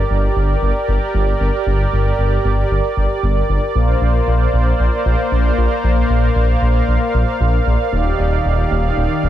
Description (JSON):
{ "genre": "synthwave", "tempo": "115 BPM", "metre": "4/4", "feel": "straight", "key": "G minor", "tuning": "A4 = 440 Hz", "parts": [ { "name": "warm analog pad", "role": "sustained chords", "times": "0.0-9.3 s", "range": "Eb3 to F5", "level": "-18 LUFS", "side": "right 1 dB", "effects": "chorus, tremolo" }, { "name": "wide detuned saw bass", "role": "bass", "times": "0.0-9.3 s", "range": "Eb1 to Bb1", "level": "-16 LUFS", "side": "equal", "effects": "chorus" } ], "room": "light reverb, digital ambience", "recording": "dense, heavily limited modern master", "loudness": "-14 LUFS", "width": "side -12 dB against mid", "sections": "0.0-9.3 A section", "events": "none", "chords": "0.0 Gm; 3.8 Bbadd9; 7.9 Ebmaj7", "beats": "0.10 0.62 1.14 | 1.67 2.19 2.71 3.23 | 3.75 4.27 4.80 5.32 | 5.84 6.36 6.88 7.40 | 7.93 8.45 8.97" }